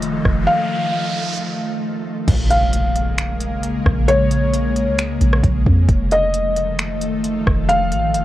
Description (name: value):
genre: hip hop, atmospheric cloud-rap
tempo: 133 BPM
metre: 4/4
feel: half-time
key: Bb minor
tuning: A4 = 440 Hz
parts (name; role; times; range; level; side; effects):
- ethereal airy pad; sustained chords; 0.0-8.2 s; Db3 to Bb3; -22 LUFS; equal; ensemble chorus, built-in reverb
- soft 808-style bass; bass; 0.0-8.2 s; F1 to F2; -19 LUFS; equal; none
- smooth R&B drum kit; drums; 0.0-8.2 s; crash cymbal, finger snaps, hi-hat, kick drum, rim click; -20 LUFS; equal; none
- riser and impact; sound effects; 0.0-4.1 s; none; -29 LUFS; equal; none
- wind-like tuned noise texture; texture; 0.0-2.2 s; A3 to Eb5; -36 LUFS; left 1 dB; built-in reverb
- felt-muted upright piano; melody; 0.5-8.2 s; Db5 to F5; -20 LUFS; left 1 dB; digital delay
room: little or no reverb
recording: worn, warbling old tape, cassette tape, warbly pitch drift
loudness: -16 LUFS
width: side -14 dB against mid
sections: 0.0-2.3 A section; 2.3-8.2 B section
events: riser 0.0-2.3; break 0.5-2.3; impact 2.3-4.1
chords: 0.0 F7; 2.3 Bbm7; 5.9 F7